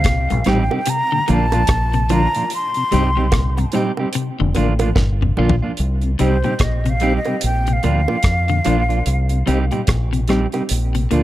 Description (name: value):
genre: roots reggae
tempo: 73 BPM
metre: 4/4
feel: swing 61% on 16ths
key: C dorian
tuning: A4 = 438 Hz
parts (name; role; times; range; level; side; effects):
- breathy concert flute; melody; 0.0-9.8 s; C5 to C6; -22 LUFS; equal; tape echo
- deep dub fingered electric bass; bass; 0.0-11.2 s; F1 to F2; -18 LUFS; equal; none
- damped 70s drum kit; drums; 0.0-11.2 s; hi-hat, kick drum, rim click, snare drum, toms; -21 LUFS; equal; none
- clean electric guitar; arpeggios; 0.1-11.2 s; G2 to F3; -25 LUFS; left 6 dB; none
- mellow tonewheel organ; accompaniment; 0.3-11.2 s; Bb2 to Eb4; -26 LUFS; left 2 dB; chorus vibrato, slow rotary speaker, tape echo
- bongos; percussion; 0.3-11.2 s; none; -28 LUFS; right 6 dB; none
- clean electric guitar; accompaniment; 0.5-11.2 s; F3 to G4; -23 LUFS; right 4 dB; tape echo
room: light reverb, small room ambience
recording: dark, warm production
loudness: -15 LUFS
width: side -14 dB against mid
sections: 0.0-5.8 A section; 5.8-11.2 B section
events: drum fill 5.0-5.8; flute solo 5.8-11.2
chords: 0.0 Cm; 0.9 Bb; 2.5 Cm; 4.1 Bb; 5.8 Cm; 7.4 Bb; 9.1 Cm; 10.7 Bb